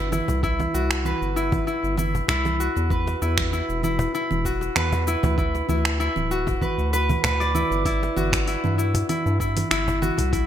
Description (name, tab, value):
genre	organic downtempo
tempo	97 BPM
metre	4/4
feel	straight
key	E minor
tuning	A4 = 440 Hz
part	concert harp	arpeggios	0.0-10.5 s	D4 to D5	-24 LUFS	left 1 dB	digital delay
part	round analog bass	bass	0.0-10.5 s	D1 to G2	-25 LUFS	equal	sidechain pumping
part	afro-pop drum kit	drums	0.1-10.5 s	congas, finger snaps, hi-hat, shaker	-28 LUFS	right 4 dB	gated reverb
part	cajon	percussion	0.1-10.3 s	none	-30 LUFS	left 1 dB	none
part	electronic kick drum	drums	0.4-10.5 s	none	-27 LUFS	equal	none
room	moderate plate reverb, RT60 2.1 s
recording	bright 1980s-style digital production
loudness	-20 LUFS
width	side -10 dB against mid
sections	0.0-10.5 A section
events	none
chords	0.0 Cmaj7; 2.9 E5; 5.4 D; 7.9 Emadd9/G